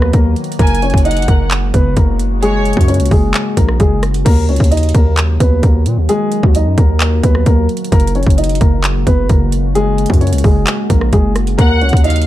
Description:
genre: hip hop, trap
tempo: 131 BPM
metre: 4/4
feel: half-time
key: Eb minor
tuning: A4 = 440 Hz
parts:
  - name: dark concert grand piano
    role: melody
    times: 0.0-12.2 s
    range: Gb3 to Eb5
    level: -18 LUFS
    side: left 1 dB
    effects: low-pass filter, tape echo
  - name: deep dark ambient pad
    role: sustained chords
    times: 0.0-12.3 s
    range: Db3 to Gb4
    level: -22 LUFS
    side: left 1 dB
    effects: chorus, built-in reverb
  - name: distorted 808-style bass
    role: bass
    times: 0.0-12.3 s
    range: Gb1 to Bb2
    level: -14 LUFS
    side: equal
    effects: distortion
  - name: trap drum kit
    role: drums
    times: 0.0-12.3 s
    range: crash cymbal, handclaps, hi-hat, kick drum, rim click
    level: -13 LUFS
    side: equal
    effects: none
  - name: warm studio violin section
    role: second line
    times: 0.6-2.9, 11.6-12.3 s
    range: Db5 to Ab5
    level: -21 LUFS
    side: equal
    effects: tape echo
room: digital ambience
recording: dark, warm production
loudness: -10 LUFS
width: side -14 dB against mid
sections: 0.0-4.3 A section; 4.3-12.3 A section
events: none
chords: 0.0 Ebm; 0.6 Gbadd9; 4.3 Ebm; 7.9 Gbadd9; 11.6 Ebm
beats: 0.14 | 0.59 1.05 1.51 1.97 | 2.42 2.88 3.34 3.80 | 4.26 4.71 5.17 5.63 | 6.09 6.55 7.00 7.46 | 7.92 8.38 8.84 9.29 | 9.75 10.21 10.67 11.13 | 11.59 12.04

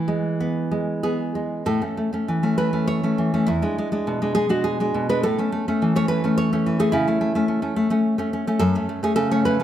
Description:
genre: romantic piece for solo classical guitar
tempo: 93-110 BPM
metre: 3/4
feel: rubato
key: A major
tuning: A4 = 440 Hz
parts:
  - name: nylon-string guitar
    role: solo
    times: 0.0-9.6 s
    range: E2 to C#5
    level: -19 LUFS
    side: equal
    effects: none
room: wet recital hall reverb, RT60 1.7 s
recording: none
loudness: -20 LUFS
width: side -11 dB against mid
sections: 0.0-1.6 A section; 1.6-9.6 B section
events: none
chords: 0.0 E; 1.6 A; 3.5 E7; 5.2 A; 6.9 A/C#; 8.6 F#m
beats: 0.39 1.02 | 1.65 2.28 2.89 | 3.48 4.07 4.65 | 5.23 5.81 6.38 | 6.93 7.48 8.04 | 8.61 9.17

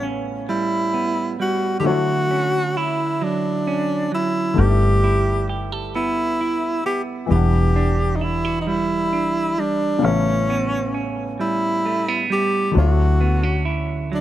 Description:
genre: R&B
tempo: 44 BPM (dotted quarters)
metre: 6/8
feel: straight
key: unclear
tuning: A4 = 443 Hz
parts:
  - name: breathy tenor saxophone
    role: melody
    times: 0.0-14.2 s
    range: C#4 to G4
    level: -22 LUFS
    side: equal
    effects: none
  - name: semi-hollow electric guitar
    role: second line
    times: 0.0-14.2 s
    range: A2 to A4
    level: -24 LUFS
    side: right 5 dB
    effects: none
  - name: warm baby grand piano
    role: accompaniment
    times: 0.0-14.2 s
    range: C#3 to F#5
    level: -27 LUFS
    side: left 8 dB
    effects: none
  - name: vintage muted fingered electric bass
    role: bass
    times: 0.0-14.2 s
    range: E1 to D2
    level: -19 LUFS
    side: equal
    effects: none
room: small room ambience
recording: none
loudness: -18 LUFS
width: side -13 dB against mid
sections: 0.0-14.2 A section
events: none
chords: 0.0 A9; 1.8 Dmaj9; 4.6 G69; 7.3 Em9; 10.0 A9; 12.8 Dmaj9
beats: 0.48 | 1.84 3.21 | 4.57 5.93 | 7.30 8.66 | 10.03 11.39 | 12.75 14.12

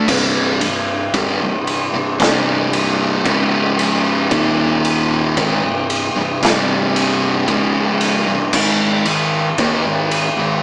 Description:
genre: stoner and doom metal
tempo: 57 BPM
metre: 4/4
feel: straight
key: C minor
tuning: A4 = 440 Hz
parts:
  - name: thick fuzz guitar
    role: riff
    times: 0.0-10.6 s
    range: C2 to Bb3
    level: -23 LUFS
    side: equal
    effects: distortion
  - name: thick fuzz guitar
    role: riff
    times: 0.0-10.6 s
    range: C2 to Bb3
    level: -22 LUFS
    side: equal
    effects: distortion
  - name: picked electric bass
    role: bass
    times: 0.1-10.6 s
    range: C1 to Eb2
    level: -31 LUFS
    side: equal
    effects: overdrive
  - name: raw garage drum kit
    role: drums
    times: 0.1-10.4 s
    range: crash cymbal, kick drum, ride cymbal, snare drum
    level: -20 LUFS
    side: equal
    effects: none
room: light reverb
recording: band playing live in one room, small speaker sound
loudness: -17 LUFS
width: mono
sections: 0.1-10.6 A section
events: none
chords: 0.1 C5; 3.3 Db5; 4.3 Eb5; 5.4 Cm; 8.5 Ab5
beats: | 0.08 1.14 2.20 3.26 | 4.31 5.37 6.42 7.48 | 8.53 9.59

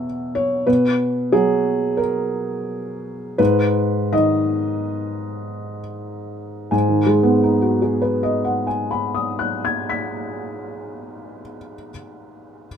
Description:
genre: neoclassical minimalist piano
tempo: 63-96 BPM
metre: 4/4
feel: rubato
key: G# minor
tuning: A4 = 440 Hz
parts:
  - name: felt-muted upright piano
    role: solo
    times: 0.0-12.7 s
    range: E2 to B6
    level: -19 LUFS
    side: equal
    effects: none
room: light reverb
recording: minimal, uncompressed stereo recording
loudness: -17 LUFS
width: side -8 dB against mid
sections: 0.0-6.7 A section; 6.7-10.4 B section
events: slowing down 0.0-6.7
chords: 0.0 E5; 0.7 B5; 3.4 G#m; 6.7 G#m7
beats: 0.04 | 0.68 1.32 1.98 2.67 | 3.39 4.13 4.93 5.79 | 6.72 7.65 8.57 9.50

